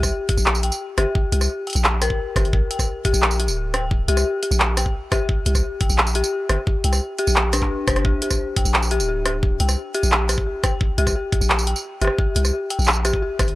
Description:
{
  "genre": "half-time drum and bass",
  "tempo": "174 BPM",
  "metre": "4/4",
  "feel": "half-time",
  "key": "G minor",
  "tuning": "A4 = 440 Hz",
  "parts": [
    { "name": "dark detuned synth bell", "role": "arpeggios", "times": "0.0-13.6 s", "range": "D4 to G5", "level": "-24 LUFS", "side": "left 3 dB", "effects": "chorus, analog delay" },
    { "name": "long sustained 808-style bass", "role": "bass", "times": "0.0-13.6 s", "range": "D1 to C2", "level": "-21 LUFS", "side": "equal", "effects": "none" },
    { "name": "drum and bass drum kit", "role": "drums", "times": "0.0-13.5 s", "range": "handclaps, hi-hat, rim click, tambourine", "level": "-22 LUFS", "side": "right 1 dB", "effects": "none" },
    { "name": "electronic kick drum", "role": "drums", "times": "0.0-13.5 s", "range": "none", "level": "-21 LUFS", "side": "equal", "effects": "none" }
  ],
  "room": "digital ambience",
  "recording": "dry, gritty hardware recording",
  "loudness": "-18 LUFS",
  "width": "side -18 dB against mid",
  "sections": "0.0-13.6 A section",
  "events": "none",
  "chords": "0.0 Gm"
}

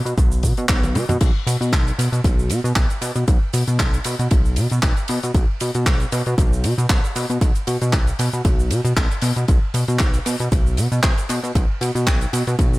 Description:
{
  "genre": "nu-disco, nu disco",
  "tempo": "116 BPM",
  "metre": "4/4",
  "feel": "swing 54% on 16ths",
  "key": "unclear",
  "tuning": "A4 = 440 Hz",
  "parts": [
    { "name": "chorused synth bass", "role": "bass", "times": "0.1-12.8 s", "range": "B1 to B2", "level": "-20 LUFS", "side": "equal", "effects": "tube saturation" },
    { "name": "damped 70s drum kit", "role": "drums", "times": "0.1-12.8 s", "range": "crash cymbal, handclaps, hi-hat, ride cymbal, shaker, toms", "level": "-25 LUFS", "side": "equal", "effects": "dub echo" },
    { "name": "electronic kick drum", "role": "drums", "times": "0.2-12.7 s", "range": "none", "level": "-18 LUFS", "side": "equal", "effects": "none" }
  ],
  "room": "little or no reverb",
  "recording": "echo-heavy mix",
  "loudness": "-17 LUFS",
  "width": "side -19 dB against mid",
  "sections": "0.0-12.8 A section",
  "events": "drum fill 0.8-1.2",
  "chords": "none"
}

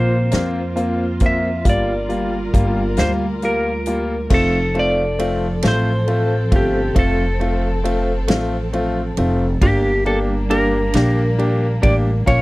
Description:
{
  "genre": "six-eight pop ballad",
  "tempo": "45 BPM (dotted quarters)",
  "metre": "6/8",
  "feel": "straight",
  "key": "F major",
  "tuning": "A4 = 440 Hz",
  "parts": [
    { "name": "clean lap steel guitar", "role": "melody", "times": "0.0-12.4 s", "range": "G4 to E5", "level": "-22 LUFS", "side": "equal", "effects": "none" },
    { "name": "clear concert grand piano", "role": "accompaniment", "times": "0.0-12.4 s", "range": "G3 to G4", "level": "-22 LUFS", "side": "left 1 dB", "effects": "none" },
    { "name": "warm studio string section", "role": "sustained chords", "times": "0.0-12.4 s", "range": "F3 to Bb4", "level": "-25 LUFS", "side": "equal", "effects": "none" },
    { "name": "upright bass", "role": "bass", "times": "0.0-12.4 s", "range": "F1 to F2", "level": "-21 LUFS", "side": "equal", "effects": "none" },
    { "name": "natural country drum kit", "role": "drums", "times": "0.3-12.4 s", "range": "crash cymbal, hi-hat, kick drum, ride cymbal, snare drum", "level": "-18 LUFS", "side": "equal", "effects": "none" }
  ],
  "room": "little or no reverb",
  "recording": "dry, close 1970s-style studio recording",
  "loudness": "-16 LUFS",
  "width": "side -20 dB against mid",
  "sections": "0.0-4.3 A section; 4.3-12.4 B section",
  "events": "none",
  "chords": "0.0 Bbsus2; 1.7 Gm7; 4.3 F; 9.6 Gm"
}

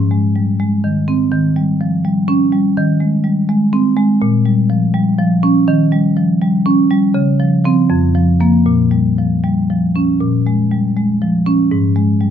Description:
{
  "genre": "classical, contemporary piece for solo marimba",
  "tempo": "82 BPM (dotted quarters)",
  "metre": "6/8",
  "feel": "rubato",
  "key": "Bb dorian",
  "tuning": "A4 = 440 Hz",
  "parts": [
    { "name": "marimba with medium mallets", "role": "solo", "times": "0.0-12.3 s", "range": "F2 to Db4", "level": "-12 LUFS", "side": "equal", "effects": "none" }
  ],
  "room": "light reverb",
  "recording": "close, detailed microphones",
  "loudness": "-12 LUFS",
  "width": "side -9 dB against mid",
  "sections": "0.0-10.2 A section; 10.2-12.3 A section",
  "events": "none",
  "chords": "0.0 Ab; 1.3 Eb9; 2.8 Ab/Eb; 4.2 Bbm6; 5.7 Eb9; 7.1 Dbmaj7; 7.9 Fsus4; 8.7 Bbm6; 10.2 Bbm7; 11.7 N.C."
}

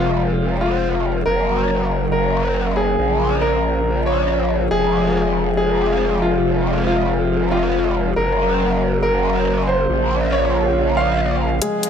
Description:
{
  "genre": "heavy wobble dubstep",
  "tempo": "139 BPM",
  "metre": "4/4",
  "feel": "swing 54% on 16ths, half-time",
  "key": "F phrygian",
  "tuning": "A4 = 439 Hz",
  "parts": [
    { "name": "warm grand piano", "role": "melody", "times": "0.0-11.9 s", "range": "Ab3 to F5", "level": "-20 LUFS", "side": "left 1 dB", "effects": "low-pass filter, dub echo" },
    { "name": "lush unison pad", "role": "sustained chords", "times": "0.0-11.9 s", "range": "C3 to Gb4", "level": "-22 LUFS", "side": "equal", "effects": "chorus" },
    { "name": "growl bass", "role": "bass", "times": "0.0-11.6 s", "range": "F1 to Bb1", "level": "-20 LUFS", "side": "equal", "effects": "chorus, overdrive" },
    { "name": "electronic hi-hat", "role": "drums", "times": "11.6-11.9 s", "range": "none", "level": "-21 LUFS", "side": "left 4 dB", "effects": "overdrive, studio reverb" },
    { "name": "riser", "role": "sound effects", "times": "11.7-11.9 s", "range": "none", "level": "-32 LUFS", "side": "right 3 dB", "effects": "none" }
  ],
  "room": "light reverb, digital ambience",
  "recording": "none",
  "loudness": "-16 LUFS",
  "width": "side -8 dB against mid",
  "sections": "0.0-11.6 A section",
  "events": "filter sweep on analog synth pad 0.0-11.6; riser 11.7",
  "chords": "0.0 Fm; 1.3 Gb; 3.0 Bbm; 4.7 Fm; 8.2 Gb; 9.9 Bbm"
}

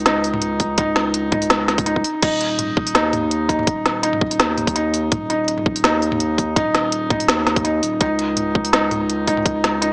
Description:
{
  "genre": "half-time drum and bass",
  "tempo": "166 BPM",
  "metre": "4/4",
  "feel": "swing 54% on 16ths, half-time",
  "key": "unclear",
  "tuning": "A4 = 440 Hz",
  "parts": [
    { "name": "felt-muted upright piano", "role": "arpeggios", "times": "0.0-9.9 s", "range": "Eb4", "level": "-23 LUFS", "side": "equal", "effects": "analog delay" },
    { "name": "saturated sub bass", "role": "bass", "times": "0.0-9.9 s", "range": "Eb1 to Eb2", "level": "-27 LUFS", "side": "equal", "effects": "none" },
    { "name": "organic electronic drum kit", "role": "drums", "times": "0.1-9.9 s", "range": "crash cymbal, hi-hat, snare drum, toms", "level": "-22 LUFS", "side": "equal", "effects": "none" },
    { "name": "electronic kick drum", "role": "drums", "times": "0.6-9.5 s", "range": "none", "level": "-22 LUFS", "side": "equal", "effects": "none" }
  ],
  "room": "light reverb",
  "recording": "dry, gritty hardware recording, cassette tape, small speaker sound",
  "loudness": "-19 LUFS",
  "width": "mono",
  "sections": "0.0-9.9 A section",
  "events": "none",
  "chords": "0.0 Dbsus2; 2.2 N.C.; 8.0 Dbsus2"
}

